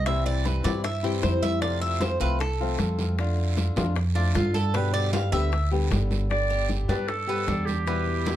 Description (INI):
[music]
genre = latin, Cuban son and guajira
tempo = 154 BPM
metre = 4/4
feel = straight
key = unclear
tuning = A4 = 440 Hz
[part]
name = flamenco guitar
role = accompaniment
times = 0.0-8.4 s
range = B2 to G4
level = -30 LUFS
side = left 4 dB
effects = none
[part]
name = Cuban tres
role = arpeggios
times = 0.0-8.4 s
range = B3 to F5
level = -30 LUFS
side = right 2 dB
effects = none
[part]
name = upright bass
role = bass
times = 0.0-8.4 s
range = G1 to G2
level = -26 LUFS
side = equal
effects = none
[part]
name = bongos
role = percussion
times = 0.1-8.4 s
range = none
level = -36 LUFS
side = left 6 dB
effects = none
[part]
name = congas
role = percussion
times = 0.1-8.4 s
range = none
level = -32 LUFS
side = right 1 dB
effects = none
[part]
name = guiro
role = percussion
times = 0.1-8.4 s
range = none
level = -40 LUFS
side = right 8 dB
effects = none
[part]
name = clear clarinet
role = melody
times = 6.3-8.4 s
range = G4 to D5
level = -28 LUFS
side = right 2 dB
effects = none
[sound]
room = light reverb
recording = dark, warm production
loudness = -23 LUFS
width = side -12 dB against mid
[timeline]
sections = 0.0-6.3 A section; 6.3-8.4 B section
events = Cuban tres solo 0.0-6.3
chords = 0.1 C; 1.6 F; 3.2 Dm/F; 4.7 G; 6.3 Gadd9